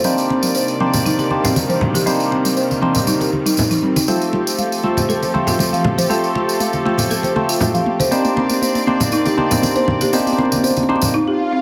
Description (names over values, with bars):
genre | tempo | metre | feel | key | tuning
afro house | 119 BPM | 4/4 | straight | C dorian | A4 = 440 Hz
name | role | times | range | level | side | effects
warm studio string section | sustained chords | 0.0-11.1 s | C3 to D5 | -27 LUFS | equal | none
folk marimba with soft mallets | arpeggios | 0.0-11.6 s | C4 to F5 | -22 LUFS | equal | tape echo
barky tine electric piano | stabs | 0.0-11.1 s | A3 to C5 | -23 LUFS | equal | phaser, low-pass filter, tape echo
electronic toms | drums | 0.0-11.2 s | none | -26 LUFS | equal | none
tambourine | percussion | 0.0-11.1 s | none | -26 LUFS | equal | none
congas | percussion | 0.3-11.1 s | none | -25 LUFS | equal | none
swell | sound effects | 11.3-11.6 s | none | -24 LUFS | equal | none
room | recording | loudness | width
moderate plate reverb, RT60 2.1 s | none | -17 LUFS | mono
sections
0.0-11.6 A section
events
build-up 0.0-11.6; drum fill 0.0-11.1; swell 11.3-11.6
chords
0.0 Cm7; 4.1 F; 8.1 Cm7